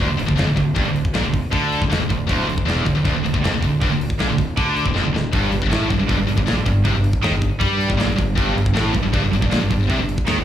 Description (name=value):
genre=heavy metal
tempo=158 BPM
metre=4/4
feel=straight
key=D minor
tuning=A4 = 439 Hz
part: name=heavy high-gain guitar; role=riff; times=0.0-10.4 s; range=D2 to G3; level=-24 LUFS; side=left 8 dB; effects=distortion, slapback echo
part: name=scooped high-gain guitar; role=riff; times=0.0-10.4 s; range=D2 to G3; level=-23 LUFS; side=right 6 dB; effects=distortion
part: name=tight distorted guitar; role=riff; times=0.0-10.4 s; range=D2 to G3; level=-26 LUFS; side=equal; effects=distortion
part: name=fuzz fingered electric bass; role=bass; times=0.0-10.4 s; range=D1 to G2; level=-23 LUFS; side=equal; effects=overdrive
part: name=tight metal drum kit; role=drums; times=0.0-10.4 s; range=hi-hat, kick drum, snare drum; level=-23 LUFS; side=equal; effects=none
room=studio reverb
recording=live gig heard through the venue's PA, club reverb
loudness=-17 LUFS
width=side -10 dB against mid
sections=0.0-10.4 A section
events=drum fill 5.0-5.3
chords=0.0 Dm; 5.3 Gmadd9